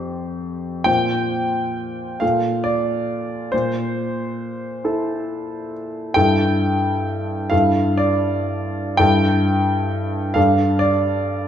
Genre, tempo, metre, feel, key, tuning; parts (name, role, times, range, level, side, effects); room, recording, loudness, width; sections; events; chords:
classical, impressionist solo piano; 39-46 BPM (dotted quarters); 6/8; rubato; A4 = 439 Hz
clear concert grand piano; solo; 0.0-11.5 s; F2 to G5; -18 LUFS; equal
wet recital hall reverb, RT60 1.9 s; -18 LUFS; side -9 dB against mid
0.0-11.5 A section
0.0 Fsus2; 0.9 Bbsus2; 2.2 F6/Bb; 3.5 Am/Bb; 6.1 Emadd11/G; 10.4 Gsus2